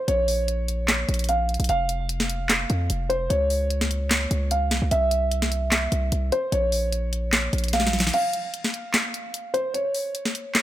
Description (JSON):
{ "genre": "hip hop, trap", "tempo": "149 BPM", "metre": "4/4", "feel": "half-time", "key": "unclear", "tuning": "A4 = 440 Hz", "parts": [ { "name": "dark concert grand piano", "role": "melody", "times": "0.0-10.6 s", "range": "C5 to F5", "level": "-26 LUFS", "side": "right 1 dB", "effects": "digital delay" }, { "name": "hard-hitting 808-style bass", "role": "bass", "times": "0.1-8.1 s", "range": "F1 to F2", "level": "-25 LUFS", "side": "equal", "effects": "none" }, { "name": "trap drum kit", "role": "drums", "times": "0.1-10.6 s", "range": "crash cymbal, handclaps, hi-hat, snare drum", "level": "-24 LUFS", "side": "equal", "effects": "none" } ], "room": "light reverb, digital ambience", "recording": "none", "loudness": "-21 LUFS", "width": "side -13 dB against mid", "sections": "0.0-8.1 A section; 8.1-10.6 B section", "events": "drum fill 7.7-8.1; break 8.1-10.6", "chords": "0.1 Bbm; 1.7 F5; 3.3 Db; 4.9 C; 6.5 Bbm; 8.1 N.C.", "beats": "| 0.08 0.48 0.89 1.29 | 1.69 2.09 2.50 2.90 | 3.30 3.71 4.11 4.51 | 4.91 5.32 5.72 6.12 | 6.52 6.93 7.33 7.73 | 8.13 8.54 8.94 9.34 | 9.74 10.15 10.55" }